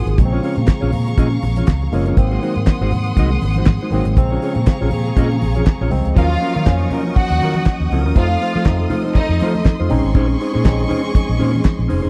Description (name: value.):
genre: disco.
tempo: 120 BPM.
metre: 4/4.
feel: swing 56% on 16ths.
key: Bb minor.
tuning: A4 = 440 Hz.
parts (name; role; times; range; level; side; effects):
tine electric piano; accompaniment; 0.0-12.1 s; Db3 to Bb4; -26 LUFS; equal; none.
clear studio string section; sustained chords; 0.0-12.1 s; Eb4 to Eb6; -31 LUFS; equal; none.
vintage muted fingered electric bass; bass; 0.0-12.1 s; F1 to F3; -21 LUFS; equal; none.
mellow electric guitar; accompaniment; 0.1-12.1 s; Gb3 to Eb5; -24 LUFS; equal; none.
damped 70s drum kit; drums; 0.1-12.0 s; handclaps, hi-hat, kick drum, snare drum; -16 LUFS; equal; none.
congas; percussion; 0.2-12.0 s; none; -30 LUFS; equal; none.
rich studio violin section; second line; 6.2-9.6 s; Eb4 to Gb5; -25 LUFS; equal; none.
room: little or no reverb.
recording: dry, close 1970s-style studio recording.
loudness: -17 LUFS.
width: mono.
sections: 0.0-6.2 A section; 6.2-12.1 B section.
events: none.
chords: 0.2 Bbm7; 2.2 Ab7; 4.2 Bbm7; 6.2 Ebm9; 8.2 F7; 9.9 Bbm11.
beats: | 0.19 0.68 1.18 1.68 | 2.18 2.67 3.17 3.67 | 4.17 4.67 5.17 5.67 | 6.16 6.66 7.16 7.66 | 8.16 8.66 9.16 9.65 | 10.15 10.65 11.15 11.65.